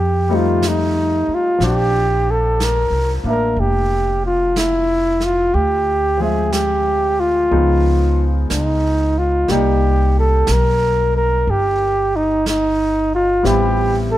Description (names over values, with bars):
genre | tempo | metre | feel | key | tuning
jazz ballad | 61 BPM | 4/4 | swing 68% on 8ths | unclear | A4 = 443 Hz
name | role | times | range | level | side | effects
mellow flugelhorn | melody | 0.0-14.2 s | Eb4 to Bb4 | -17 LUFS | equal | none
upright bass | bass | 0.0-14.2 s | F1 to F2 | -19 LUFS | equal | none
clear grand piano | accompaniment | 0.3-14.2 s | F3 to E5 | -23 LUFS | left 3 dB | none
jazz brush drum kit | drums | 0.6-14.2 s | brushed snare drum, hi-hat, snare drum | -29 LUFS | right 2 dB | none
room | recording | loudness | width
light reverb | dark, warm production | -14 LUFS | side -14 dB against mid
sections
0.0-14.2 A section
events
none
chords
0.0 F9; 1.6 Bbadd9; 5.5 Dm7b5; 7.5 C#9; 9.5 Cm9; 13.4 Am9